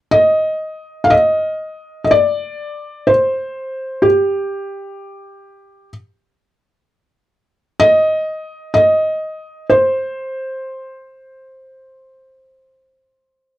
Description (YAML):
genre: caucasian folk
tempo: 62 BPM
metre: 4/4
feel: uneven beats, rubato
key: C minor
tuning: A4 = 443 Hz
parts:
  - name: felt-muted upright piano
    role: solo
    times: 0.1-13.6 s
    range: G4 to F5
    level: -14 LUFS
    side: equal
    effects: none
room: little or no reverb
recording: dry, close 1970s-style studio recording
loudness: -14 LUFS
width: side -15 dB against mid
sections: 0.1-13.6 A section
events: none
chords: none